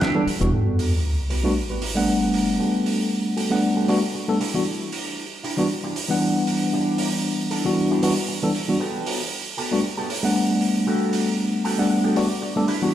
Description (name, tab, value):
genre	nu-disco, nu disco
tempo	116 BPM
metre	4/4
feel	swing 55% on 16ths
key	unclear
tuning	A4 = 440 Hz
part	electric guitar with an envelope filter	riff	0.0-12.9 s	B3 to A5	-30 LUFS	right 2 dB	wide subtle chorus, low-pass filter, tape echo
part	damped 70s drum kit	drums	0.0-12.8 s	hi-hat, snare drum	-29 LUFS	right 4 dB	studio reverb
part	tine electric piano	accompaniment	0.1-12.9 s	E3 to F#5	-21 LUFS	left 1 dB	medium stereo tremolo, tape echo
part	fingered electric bass with an envelope filter	bass	0.3-0.5 s	E1	-24 LUFS	equal	none
part	sub drop	sound effects	0.5-2.6 s	none	-24 LUFS	equal	none
room	moderate plate reverb, RT60 2.8 s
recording	played on a big sound system in a bare room, large studio reverb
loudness	-20 LUFS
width	side -11 dB against mid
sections	0.5-12.9 A section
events	clean electric guitar fill 0.0-0.5, 11.4-12.9; impact 0.5-2.6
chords	0.0 Em7; 0.5 Gmaj9; 4.4 Em7; 8.8 Gmaj9